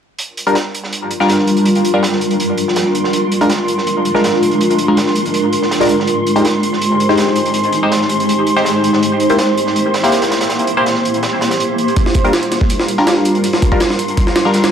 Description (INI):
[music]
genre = drum and bass, jungle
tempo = 163 BPM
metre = 4/4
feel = straight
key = G phrygian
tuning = A4 = 443 Hz
[part]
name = crunchy breakbeat drum kit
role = drums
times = 0.2-14.6 s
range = hi-hat, snare drum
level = -22 LUFS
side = right 2 dB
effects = high-pass filter on hats, small room ambience, high-pass filter on snare, high-pass filter on room
[part]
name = wind-like tuned noise texture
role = texture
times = 1.2-14.7 s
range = C6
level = -23 LUFS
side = equal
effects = built-in reverb
[part]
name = band-passed chord stab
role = stabs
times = 0.5-14.7 s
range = G3 to C5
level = -16 LUFS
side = left 1 dB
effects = phaser, dub echo
[part]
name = jungle sampler-style drum kit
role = drums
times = 12.0-14.7 s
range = hi-hat, kick drum, snare drum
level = -14 LUFS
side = equal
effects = small room ambience
[sound]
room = moderate plate reverb, RT60 1.6 s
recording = vinyl crackle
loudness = -12 LUFS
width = side -8 dB against mid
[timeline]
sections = 0.2-14.7 A section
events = none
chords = 0.2 Gm7; 3.1 Bb7; 6.1 Abmaj7; 9.0 C7; 12.0 Gm7